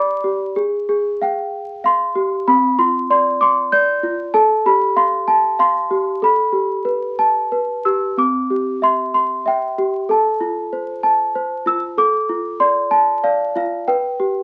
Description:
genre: children's music, lullaby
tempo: 95 BPM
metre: 3/4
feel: rubato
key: C major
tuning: A4 = 435 Hz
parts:
  - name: small celesta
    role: solo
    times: 0.0-14.4 s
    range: C4 to G6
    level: -18 LUFS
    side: equal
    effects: none
room: wet studio reverb, RT60 0.6 s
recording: very old 78 rpm record, vinyl crackle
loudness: -18 LUFS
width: mono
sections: 0.0-8.2 A section; 8.2-14.4 B section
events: none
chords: 0.0 G; 0.6 Fmadd9; 2.5 Dm7; 4.4 Fadd9; 6.2 Gadd9; 8.2 C; 10.1 F; 12.0 Dm; 13.9 G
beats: | 0.57 1.21 1.85 | 2.48 3.10 3.73 | 4.35 4.97 5.60 | 6.23 6.86 7.52 | 8.19 8.83 9.46 | 10.10 10.73 11.35 | 11.98 12.61 13.24 | 13.88

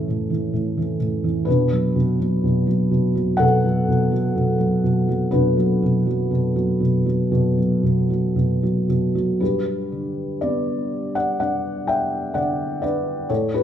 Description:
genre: classical, lyrical solo piano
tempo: 56-66 BPM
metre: 4/4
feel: rubato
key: unclear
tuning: A4 = 440 Hz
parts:
  - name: felt-muted upright piano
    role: solo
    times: 0.0-13.6 s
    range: G2 to G5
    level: -18 LUFS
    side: equal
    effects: none
room: wet recital hall reverb, RT60 1.4 s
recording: minimal, uncompressed stereo recording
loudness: -18 LUFS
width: side -10 dB against mid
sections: 0.0-9.4 A section; 9.4-13.6 B section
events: none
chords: 0.0 A; 1.5 Bm7; 9.4 G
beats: 0.54 | 1.47 2.43 3.39 4.35 | 5.32 6.31 7.31 8.36 | 9.41 10.42 11.40 12.35 | 13.29

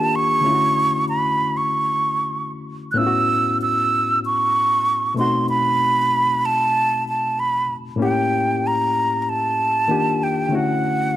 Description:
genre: soul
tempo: 95 BPM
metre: 4/4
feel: swing 54% on 16ths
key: A major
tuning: A4 = 440 Hz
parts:
  - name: breathy mellow silver concert flute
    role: melody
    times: 0.0-11.2 s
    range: F#5 to F#6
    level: -18 LUFS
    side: right 2 dB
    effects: none
  - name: barky reed electric piano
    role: accompaniment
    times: 0.0-11.2 s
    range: A2 to G4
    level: -23 LUFS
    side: left 3 dB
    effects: none
room: light reverb, small room ambience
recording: none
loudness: -17 LUFS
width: side -13 dB against mid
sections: 0.0-11.2 A section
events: none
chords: 0.4 Dmaj9; 3.0 A69; 5.2 B7b9; 8.0 A7b9; 9.9 D#maj9; 10.5 Dmaj9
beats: | 0.45 1.08 1.71 2.33 | 2.96 3.59 4.22 4.85 | 5.48 6.11 6.74 7.37 | 8.00 8.63 9.27 9.89 | 10.53 11.16

